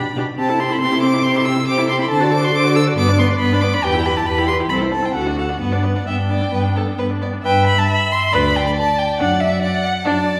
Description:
quick classical-period movement for string quartet; 139 BPM; 4/4; rubato; G major; A4 = 440 Hz
rich violin; melody; 0.0-10.4 s; D5 to E6; -22 LUFS; equal
rich violin; second line; 0.0-10.4 s; F#4 to F#5; -26 LUFS; equal
warm viola; accompaniment; 0.0-10.3 s; B3 to B4; -24 LUFS; equal
dark cello; bass; 0.0-10.4 s; C2 to D3; -22 LUFS; equal
wet recital hall reverb, RT60 1.5 s; recorded in a church or concert hall; -17 LUFS; mono
0.0-7.5 A section; 7.5-10.4 A section
0.4 C6; 2.1 D7; 3.0 G; 3.8 Em; 4.7 Am/C; 5.1 D; 5.6 G; 9.2 D/F#
| 0.38 0.81 1.25 1.68 | 2.10 2.53 2.97 3.40 | 3.83 4.27 4.70 5.14 | 5.60 6.07 6.53 6.99 | 7.45 7.89 8.33 8.77 | 9.19 9.62 10.05

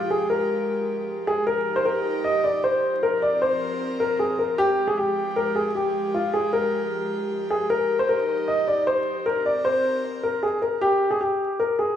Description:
hip hop; 154 BPM; 4/4; half-time; F minor; A4 = 441 Hz
dark baby grand piano; melody; 0.0-11.9 s; F4 to Eb5; -21 LUFS; left 1 dB; tape echo
airy breathy pad; sustained chords; 0.0-10.8 s; F3 to Bb4; -30 LUFS; right 2 dB; chorus
moderate lush hall reverb, RT60 2.9 s; vinyl crackle, studio reverb; -21 LUFS; side -10 dB against mid
0.0-10.8 A section; 10.8-12.0 B section
0.0 Fmadd9; 1.5 Ebadd9; 3.0 Bbsus2; 4.6 Fmadd9; 7.7 Ebadd9; 9.3 Bbsus2; 10.8 N.C.
0.30 0.69 1.08 | 1.47 1.85 2.25 2.63 | 3.02 3.41 3.80 4.19 | 4.58 4.97 5.36 5.75 | 6.14 6.53 6.92 7.31 | 7.70 8.09 8.48 8.87 | 9.26 9.65 10.04 10.43 | 10.82 11.21 11.60

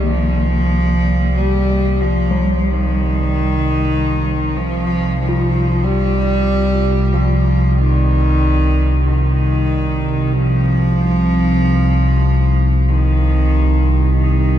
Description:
dark ambient drone; 47 BPM; 4/4; straight; C minor; A4 = 438 Hz
warm cello; melody; 0.0-14.6 s; Eb3 to G3; -18 LUFS; equal; diffuse ambient delay
gamelan-type bronze metallophone; arpeggios; 0.0-12.9 s; Eb3 to F4; -26 LUFS; left 1 dB; diffuse ambient delay
analog drone; drone; 0.0-14.6 s; C2 to C3; -15 LUFS; equal; chorus
moderate huge ambient reverb, RT60 7.9 s; dreamy mix soaked in reverb; -13 LUFS; side -11 dB against mid
0.0-14.6 A section
filter sweep on synth drone 0.0-14.6
0.0 Cm7
| 0.11 1.38 2.66 3.94 | 5.21 6.49 7.77 9.04 | 10.32 11.60 12.87 14.15

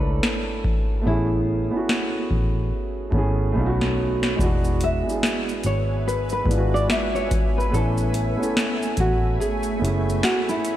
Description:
lo-fi hip hop; 72 BPM; 4/4; swing 60% on 16ths; A major; A4 = 440 Hz
nylon-string guitar; melody; 0.0-10.8 s; E4 to E5; -27 LUFS; left 1 dB; low-pass filter, diffuse ambient delay
dark upright piano; accompaniment; 0.0-10.8 s; G#3 to G#5; -26 LUFS; right 2 dB; cassette tape, low-pass filter
vintage muted fingered electric bass; bass; 0.0-10.2 s; E1 to C#2; -24 LUFS; equal
booming analog drum machine; drums; 0.2-10.8 s; hi-hat, kick drum, shaker, snare drum; -24 LUFS; equal
granular cloud pad; sustained chords; 5.5-10.8 s; A3 to C#6; -32 LUFS; equal; built-in reverb, wide subtle chorus, low-pass filter
moderate lush hall reverb, RT60 2.3 s; dreamy mix soaked in reverb; -20 LUFS; side -12 dB against mid
0.0-10.8 A section
break 0.0-4.4; drum fill 3.6-4.4
0.0 Bm11; 1.1 Amaj7; 3.6 B7; 4.4 E7; 7.7 Amaj7
0.23 | 1.06 1.89 2.73 3.56 | 4.39 5.23 6.06 6.89 | 7.73 8.56 9.39 10.23

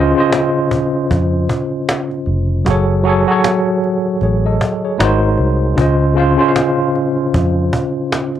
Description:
lo-fi hip hop; 77 BPM; 4/4; swing 59% on 16ths; Db major; A4 = 442 Hz
tine electric piano; accompaniment; 0.0-8.4 s; Db3 to F5; -15 LUFS; equal; overdrive, fast stereo tremolo, cassette tape, low-pass filter
vintage muted fingered electric bass; bass; 0.0-7.7 s; F1 to F2; -15 LUFS; equal; transformer saturation
cajon; drums; 0.3-8.4 s; -20 LUFS; equal
light reverb; dry, gritty hardware recording; -13 LUFS; side -10 dB against mid
0.0-8.4 A section
0.0 Dbmaj7; 2.7 Gbmadd9; 5.0 Ab7; 5.8 Dbmaj7
0.32 1.10 1.88 | 2.66 3.44 4.22 5.00 | 5.78 6.56 7.34 8.12

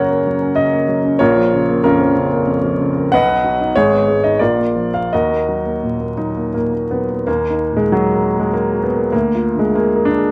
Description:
classical, romantic character piece for solo piano; 80-103 BPM; 3/4; rubato; Eb minor from 3.1 s; A4 = 444 Hz
warm upright piano; solo; 0.0-10.3 s; Ab1 to F#5; -16 LUFS; equal
light reverb; vinyl crackle; -16 LUFS; mono
0.0-7.3 A section; 7.3-10.3 B section
0.0 F#; 1.2 A#m; 3.1 B; 3.7 Abm; 4.4 Bb; 5.1 Ebm; 9.1 Bb7/D
0.56 | 1.20 1.84 2.46 | 3.11 3.74 4.39 | 5.11 5.83 6.55 | 7.27 7.92 8.53 | 9.13 9.76

